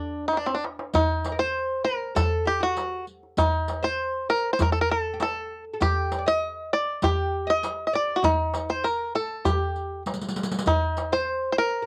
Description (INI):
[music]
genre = Arabic maqam ensemble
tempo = 99 BPM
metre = 4/4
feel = straight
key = unclear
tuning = A4 = 441 Hz
[part]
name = bluegrass banjo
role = melody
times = 0.0-11.9 s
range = C4 to Eb5+25c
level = -27 LUFS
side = equal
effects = cassette tape
[part]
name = oud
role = second line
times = 0.0-11.9 s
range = D4 to Eb5+25c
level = -36 LUFS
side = equal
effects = cassette tape
[part]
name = darbuka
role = percussion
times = 0.0-11.1 s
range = none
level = -30 LUFS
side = equal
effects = none
[part]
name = riq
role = percussion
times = 0.9-11.2 s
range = none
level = -36 LUFS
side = equal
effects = none
[sound]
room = light reverb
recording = home recording on cassette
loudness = -26 LUFS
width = mono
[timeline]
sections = 0.9-11.9 A section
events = drum fill 0.3-0.9, 10.1-10.7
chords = none